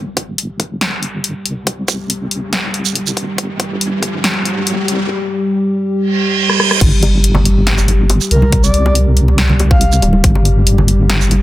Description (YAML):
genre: deep dubstep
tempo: 140 BPM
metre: 4/4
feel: half-time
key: unclear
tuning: A4 = 440 Hz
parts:
  - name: dark analog pad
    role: sustained chords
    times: 0.0-11.4 s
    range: G3 to G4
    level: -19 LUFS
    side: equal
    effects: chorus
  - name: deep soft wobble bass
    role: bass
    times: 0.0-11.4 s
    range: D1 to C2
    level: -14 LUFS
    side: equal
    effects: chorus, tube saturation, high-pass filter
  - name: riser and reverse cymbal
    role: sound effects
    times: 2.0-6.8 s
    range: none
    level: -20 LUFS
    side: right 4 dB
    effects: none
  - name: deep house drum kit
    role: drums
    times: 0.2-11.4 s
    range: crash cymbal, hi-hat, rim click, shaker, snare drum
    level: -17 LUFS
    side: equal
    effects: none
  - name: electronic kick drum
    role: drums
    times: 0.2-4.1, 6.8-10.3 s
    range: none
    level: -14 LUFS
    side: equal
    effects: overdrive, high-pass filter on kick, high-pass filter on room
  - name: bongos and congas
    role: percussion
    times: 7.0-11.4 s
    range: none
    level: -20 LUFS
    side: right 1 dB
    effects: dub echo
  - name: breathy flute-like synth lead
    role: melody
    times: 8.3-10.0 s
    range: Bb4 to F5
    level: -21 LUFS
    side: left 1 dB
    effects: chorus, tremolo, dub echo
room: light reverb, digital ambience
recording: dense, heavily limited modern master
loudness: -12 LUFS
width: side -16 dB against mid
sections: 0.0-6.8 A section; 6.8-11.4 B section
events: build-up 0.0-6.8; filter sweep on analog synth pad 0.0-6.8; riser 2.0-5.1; reverse cymbal 6.1-6.8; drum fill 6.5-6.8; drop 6.8-11.4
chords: 0.0 G5